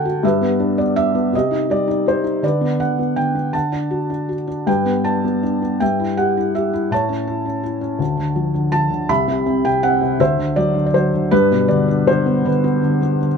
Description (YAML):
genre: classical, lyrical solo piano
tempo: 54 BPM (dotted quarters)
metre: 6/8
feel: rubato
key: G major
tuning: A4 = 443 Hz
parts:
  - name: felt-muted upright piano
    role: solo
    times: 0.0-13.4 s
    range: C2 to B5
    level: -16 LUFS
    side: equal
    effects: none
room: light reverb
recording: close, detailed microphones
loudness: -16 LUFS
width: side -6 dB against mid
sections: 0.0-13.4 A section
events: none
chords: 0.2 G; 1.3 Cm; 2.4 D6; 3.5 D; 4.7 G; 5.8 Emadd9/G; 6.9 A; 8.0 Dm; 9.1 Cmaj7#11; 10.2 D7; 11.3 G